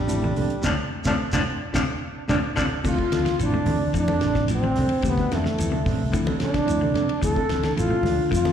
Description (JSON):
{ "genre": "afrobeat", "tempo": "110 BPM", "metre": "4/4", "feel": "straight", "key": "D dorian", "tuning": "A4 = 440 Hz", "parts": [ { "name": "trombone with bucket mute", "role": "melody", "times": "0.0-8.5 s", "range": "A3 to A4", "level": "-26 LUFS", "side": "equal", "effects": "slapback echo, tape echo" }, { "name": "bright trombone", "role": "second line", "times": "0.0-8.5 s", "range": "A3 to A4", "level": "-34 LUFS", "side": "right 1 dB", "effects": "slapback echo" }, { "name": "clear baritone saxophone", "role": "second line", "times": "0.0-2.6 s", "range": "F3 to G3", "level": "-33 LUFS", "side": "left 1 dB", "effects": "slapback echo" }, { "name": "clean electric guitar", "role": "arpeggios", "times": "0.0-8.5 s", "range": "A2 to D3", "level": "-30 LUFS", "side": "left 5 dB", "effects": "slapback echo" }, { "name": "fingered electric bass", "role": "bass", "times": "0.0-8.5 s", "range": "A1 to D3", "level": "-27 LUFS", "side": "equal", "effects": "none" }, { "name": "bell-like tine electric piano", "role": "accompaniment", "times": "0.1-8.5 s", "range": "F3 to G4", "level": "-31 LUFS", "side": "moving between left 9 dB and right 1 dB", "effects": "auto-pan, slapback echo" }, { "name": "damped 70s drum kit", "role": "drums", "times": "0.1-8.5 s", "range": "crash cymbal, hi-hat, kick drum, ride cymbal, snare drum", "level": "-31 LUFS", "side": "equal", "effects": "none" }, { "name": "shekere", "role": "percussion", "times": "0.1-8.5 s", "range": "none", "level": "-35 LUFS", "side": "right 1 dB", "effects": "none" }, { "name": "mellow electric guitar", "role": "stabs", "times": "0.2-8.5 s", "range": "F3 to A4", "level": "-31 LUFS", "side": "right 9 dB", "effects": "tremolo, slapback echo" }, { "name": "congas", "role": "percussion", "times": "0.2-8.5 s", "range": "none", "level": "-30 LUFS", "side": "left 1 dB", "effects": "slapback echo" } ], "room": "light reverb, small room ambience", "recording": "live gig heard through the venue's PA, recital hall reverb", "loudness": "-20 LUFS", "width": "side -8 dB against mid", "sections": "0.0-2.8 A section; 2.8-8.5 A section", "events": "band accent 0.6-2.8; drum fill 2.0-2.8; tine electric piano fill 2.0-2.8", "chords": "0.0 Dm11; 2.8 Dm9" }